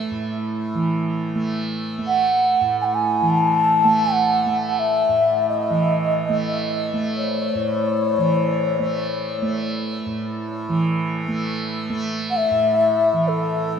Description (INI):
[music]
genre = world meditative, free-time meditation music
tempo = free time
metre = none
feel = none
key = A lydian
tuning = A4 = 440 Hz
[part]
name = tanpura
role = drone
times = 0.0-13.8 s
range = A2 to A3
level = -23 LUFS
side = right 2 dB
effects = none
[part]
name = mellow xiao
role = melody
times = 2.1-13.8 s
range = A4 to A5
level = -19 LUFS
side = left 1 dB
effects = diffuse ambient delay
[sound]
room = wet huge ambient reverb, RT60 6.5 s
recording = none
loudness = -18 LUFS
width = side -7 dB against mid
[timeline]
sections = 0.0-13.8 A section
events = none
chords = none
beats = free time